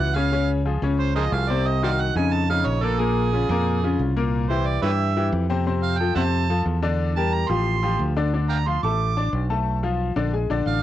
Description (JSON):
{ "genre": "jazz", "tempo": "180 BPM", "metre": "4/4", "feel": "straight", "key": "F major", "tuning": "A4 = 443 Hz", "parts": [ { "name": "overdriven harmonica", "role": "second line", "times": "0.0-10.8 s", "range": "Ab4 to D6", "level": "-26 LUFS", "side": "right 8 dB", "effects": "cassette tape" }, { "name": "bright baby grand piano", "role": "accompaniment", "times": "0.0-10.8 s", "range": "Bb2 to D6", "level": "-24 LUFS", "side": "left 6 dB", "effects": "cassette tape" }, { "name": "fingered electric bass", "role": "bass", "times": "0.0-10.8 s", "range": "A1 to G2", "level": "-23 LUFS", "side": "right 1 dB", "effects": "none" } ], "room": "light reverb", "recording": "home recording on cassette", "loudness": "-20 LUFS", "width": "side -12 dB against mid", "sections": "0.0-8.3 A section; 8.3-10.8 A section", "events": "harmonica solo 0.0-10.8", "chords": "0.3 Dbmaj7; 1.7 Cdim; 2.3 Bbmadd11; 3.0 Bbm9; 4.3 C7; 5.7 F6; 7.0 Em7b5; 7.7 F69/A; 8.3 Dm; 9.7 Bm7b5", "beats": "| 0.33 0.66 0.99 1.33 | 1.66 1.99 2.33 2.66 | 3.00 3.33 3.66 4.00 | 4.33 4.66 5.00 5.33 | 5.66 6.00 6.33 6.66 | 7.00 7.33 7.67 8.00 | 8.33 8.66 9.00 9.33 | 9.67 10.00 10.33 10.67" }